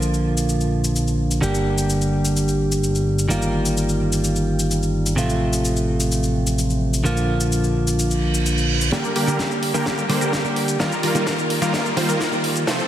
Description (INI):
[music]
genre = EDM, festival progressive house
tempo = 128 BPM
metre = 4/4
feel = straight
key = G minor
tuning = A4 = 440 Hz
[part]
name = direct-recorded clean electric guitar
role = accompaniment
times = 0.0-12.8 s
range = C3 to G4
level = -21 LUFS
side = right 1 dB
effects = sidechain pumping, dub echo
[part]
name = fat analog bass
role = bass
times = 0.0-8.9 s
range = G1 to Bb1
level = -23 LUFS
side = left 1 dB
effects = sidechain pumping
[part]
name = house drum kit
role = drums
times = 0.0-12.9 s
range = hi-hat, shaker, snare drum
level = -27 LUFS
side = left 2 dB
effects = overdrive, high-pass filter on perc, high-pass filter on snare, high-pass filter on hats, high-pass filter on room
[part]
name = reverse cymbal and riser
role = sound effects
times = 8.1-12.9 s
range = none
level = -29 LUFS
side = right 4 dB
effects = none
[part]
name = supersaw chords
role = riff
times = 8.9-12.8 s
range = D3 to C5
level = -21 LUFS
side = equal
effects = sidechain pumping, low-pass filter, dub echo
[part]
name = electronic kick drum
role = drums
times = 8.9-12.8 s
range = none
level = -30 LUFS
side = left 1 dB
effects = overdrive, high-pass filter on kick, high-pass filter on room
[sound]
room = moderate lush hall reverb, RT60 1.9 s, digital ambience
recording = heavily compressed radio sound, multiband compression, high-pass filter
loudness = -18 LUFS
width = side -11 dB against mid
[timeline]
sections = 0.0-8.9 A section; 8.9-12.9 B section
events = reverse cymbal 8.1-8.9; build-up 8.9-12.9; drum fill 8.9-12.9; filter sweep on supersaw synth 8.9-12.9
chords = 0.0 Bb; 1.4 Gm; 3.3 Ebadd9/G; 5.2 F/A; 7.0 Bb; 8.9 Gm; 10.8 Ebadd9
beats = 0.02 0.49 0.95 | 1.42 1.89 2.36 2.83 | 3.30 3.77 4.24 4.70 | 5.17 5.64 6.11 6.58 | 7.05 7.52 7.99 8.45 | 8.92 9.39 9.86 10.33 | 10.80 11.27 11.74 12.20 | 12.67